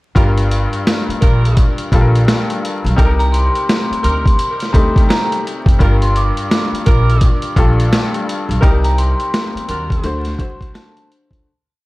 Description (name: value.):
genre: hip hop, boom-bap hip-hop.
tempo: 85 BPM.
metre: 4/4.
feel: swing 61% on 16ths.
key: G minor.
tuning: A4 = 440 Hz.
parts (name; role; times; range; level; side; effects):
bright upright piano; accompaniment; 0.1-11.5 s; G2 to C5; -21 LUFS; left 2 dB; high-pass filter, low-pass filter.
clear saxophone section; stabs; 0.2-10.2 s; D4 to Bb4; -26 LUFS; right 2 dB; high-pass filter, low-pass filter, digital delay.
upright bass; bass; 0.2-11.4 s; F#1 to Eb2; -16 LUFS; equal; none.
boom bap sampler-style drum kit; drums; 0.2-11.4 s; hi-hat, kick drum, snare drum; -15 LUFS; equal; none.
vibraphone with hard mallets; melody; 3.2-11.1 s; A5 to D6; -22 LUFS; equal; high-pass filter, low-pass filter.
room: little or no reverb.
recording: dark, warm production, vinyl crackle.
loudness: -12 LUFS.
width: side -20 dB against mid.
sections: 0.2-11.4 hook.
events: fade-out 8.6-11.4.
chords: 0.2 Gm7; 3.0 Cm7; 5.8 Gm7; 8.6 Cm7; 10.0 D7.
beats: | 0.16 0.86 1.57 2.27 | 2.98 3.69 4.39 5.10 | 5.80 6.51 7.21 7.92 | 8.63 9.33 10.04 10.74.